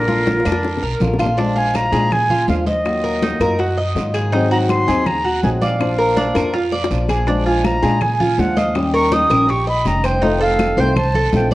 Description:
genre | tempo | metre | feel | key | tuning
latin, Cuban son and guajira | 163 BPM | 4/4 | straight | unclear | A4 = 440 Hz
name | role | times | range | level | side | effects
reedy concert flute | melody | 0.0-11.5 s | Bb4 to Eb6 | -20 LUFS | right 1 dB | none
flamenco guitar | accompaniment | 0.0-11.5 s | C3 to Ab4 | -22 LUFS | left 2 dB | none
Cuban tres | arpeggios | 0.0-11.5 s | D4 to Eb5 | -20 LUFS | right 1 dB | tape echo
upright bass | bass | 0.0-11.5 s | F1 to Bb2 | -21 LUFS | equal | none
bongos | percussion | 0.1-11.5 s | none | -28 LUFS | left 4 dB | none
congas | percussion | 0.1-11.5 s | none | -24 LUFS | equal | none
guiro | percussion | 0.3-11.5 s | none | -34 LUFS | right 7 dB | none
claves | percussion | 0.5-11.1 s | none | -33 LUFS | left 4 dB | none
room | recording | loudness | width
moderate large studio reverb, RT60 0.9 s | worn, warbling old tape, cassette tape, warbly pitch drift | -14 LUFS | side -17 dB against mid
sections
0.0-1.4 A section; 1.4-11.5 B section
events
drum fill 0.0-1.4, 6.7-7.3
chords
0.0 Bb; 1.4 Bb7; 2.9 Ebmadd9; 4.3 Ab7; 5.8 Bb; 7.3 Bb7; 8.8 Eb7; 10.2 F7

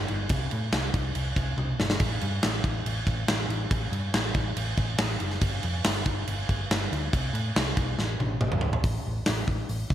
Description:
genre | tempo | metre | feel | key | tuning
hard rock | 141 BPM | 4/4 | straight | A minor | A4 = 440 Hz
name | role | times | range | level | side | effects
hollow-body short-scale picked electric bass | bass | 0.0-9.9 s | F#1 to A2 | -30 LUFS | equal | none
big rock drum kit | drums | 0.1-9.9 s | crash cymbal, hi-hat, kick drum, snare drum, toms | -27 LUFS | equal | none
room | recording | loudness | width
little or no reverb | none | -25 LUFS | side -11 dB against mid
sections
0.0-8.8 A section; 8.8-9.9 B section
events
drum fill 1.6-2.0, 8.0-8.8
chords
none

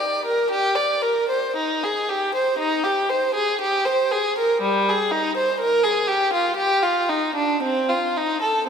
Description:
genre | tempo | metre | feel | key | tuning
classical, baroque-style suite movement for unaccompanied violin | 55-62 BPM | 3/4 | rubato | unclear | A4 = 442 Hz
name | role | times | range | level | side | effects
rich violin | solo | 0.0-8.7 s | G3 to D5 | -19 LUFS | equal | none
room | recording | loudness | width
wet church reverb, RT60 3.4 s | minimal, uncompressed stereo recording | -19 LUFS | side -7 dB against mid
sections
0.0-8.7 A section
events
none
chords
none

